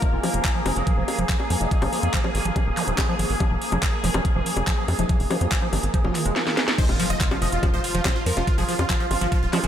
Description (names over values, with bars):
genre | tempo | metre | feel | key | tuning
psychedelic trance | 142 BPM | 4/4 | straight | F minor | A4 = 440 Hz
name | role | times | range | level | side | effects
formant-sweep wobble bass | second line | 0.0-6.9 s | Ab3 to F4 | -39 LUFS | left 2 dB | none
bubbling stepped-filter texture | sustained chords | 0.0-9.7 s | F3 to Ab4 | -28 LUFS | right 1 dB | chorus, built-in reverb, sidechain pumping
liquid acid bass | riff | 0.0-9.7 s | Eb3 to Ab3 | -29 LUFS | moving between left 2 dB and right 4 dB | phaser, auto-pan, sidechain pumping, tape echo
electronic kick drum | drums | 0.0-9.4 s | none | -23 LUFS | equal | small room ambience
garage drum kit | drums | 0.0-9.7 s | bongos, crash cymbal, handclaps, hi-hat, snare drum | -27 LUFS | left 1 dB | small room ambience
tight sequencer bass | bass | 0.1-9.7 s | Eb1 to F2 | -25 LUFS | equal | none
zap and impact | sound effects | 2.8-2.9, 6.8-9.6 s | none | -34 LUFS | equal | none
supersaw stab | melody | 6.8-9.7 s | F4 to Eb5 | -29 LUFS | right 1 dB | phaser, sidechain pumping, tape echo
room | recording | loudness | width
moderate church reverb, RT60 4.0 s | dreamy mix soaked in reverb | -20 LUFS | side -10 dB against mid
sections
0.0-6.8 A section; 6.8-9.7 B section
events
filter sweep on acid bass 0.0-6.8; drum fill 6.4-6.8; drop 6.8-9.7; impact 6.8-8.5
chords
0.0 F5